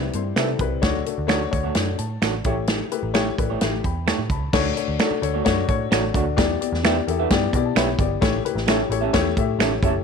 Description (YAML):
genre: uptempo 1960s-style soul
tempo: 130 BPM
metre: 4/4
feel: straight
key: D major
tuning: A4 = 440 Hz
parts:
  - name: dark upright piano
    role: accompaniment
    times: 0.0-10.0 s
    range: G3 to C#6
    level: -24 LUFS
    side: left 13 dB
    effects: none
  - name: vintage muted picked electric bass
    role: bass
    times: 0.0-10.0 s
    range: F#1 to C3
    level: -27 LUFS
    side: right 2 dB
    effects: none
  - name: natural country drum kit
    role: drums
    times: 0.1-9.9 s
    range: crash cymbal, hi-hat, kick drum, snare drum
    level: -23 LUFS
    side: right 1 dB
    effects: none
  - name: electric guitar through a small old amp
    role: stabs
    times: 0.4-9.9 s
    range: A3 to E5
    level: -27 LUFS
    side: right 15 dB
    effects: none
  - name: finger snaps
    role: percussion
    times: 0.4-9.7 s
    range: none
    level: -27 LUFS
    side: right 14 dB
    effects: none
room: small room ambience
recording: 1960s-style stereo with parts hard left and right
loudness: -19 LUFS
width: side -6 dB against mid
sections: 0.0-4.5 A section; 4.5-10.0 B section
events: upright piano fill 3.1-4.5, 6.8-8.2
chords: 0.0 Cmaj7; 0.8 Dmaj7; 2.5 A7; 4.5 Dmaj7; 6.4 Em7; 8.2 A7